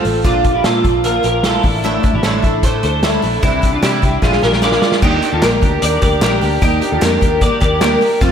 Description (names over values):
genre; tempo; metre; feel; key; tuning
jangly indie pop; 151 BPM; 4/4; straight; unclear; A4 = 440 Hz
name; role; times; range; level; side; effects
picked twelve-string acoustic guitar; accompaniment; 0.0-8.3 s; A2 to G4; -19 LUFS; right 5 dB; slapback echo
twelve-string electric guitar; arpeggios; 0.0-8.3 s; A3 to D5; -16 LUFS; left 2 dB; ensemble chorus, tape echo, slapback echo
vintage muted fingered electric bass; bass; 0.0-8.3 s; A1 to C3; -20 LUFS; equal; none
vintage drum kit; drums; 0.0-8.3 s; crash cymbal, hi-hat, kick drum, snare drum; -17 LUFS; equal; none
group handclap; percussion; 5.4-7.9 s; none; -30 LUFS; left 2 dB; none
room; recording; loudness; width
moderate lush hall reverb, RT60 1.7 s, small room ambience; big arena sound; -12 LUFS; side -8 dB against mid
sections
0.0-5.0 A section; 5.0-8.3 B section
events
drum fill 4.2-5.0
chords
0.2 Bb; 1.6 Asus4; 3.4 Cadd9; 4.2 Bb7; 5.0 Ebmaj7